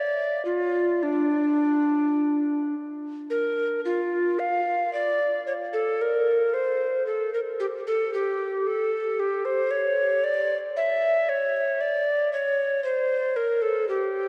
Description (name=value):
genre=classical, baroque-style fantasia for unaccompanied recorder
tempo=57 BPM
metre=3/4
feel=uneven beats, rubato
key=D minor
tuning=A4 = 440 Hz
part: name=mellow hollow tenor recorder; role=solo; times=0.0-14.3 s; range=D4 to F5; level=-25 LUFS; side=equal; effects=none
room=wet cathedral reverb, RT60 4.9 s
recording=worn, warbling old tape, cassette tape, warbly pitch drift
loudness=-25 LUFS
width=mono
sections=0.0-3.3 A section; 3.3-14.3 A section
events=none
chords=none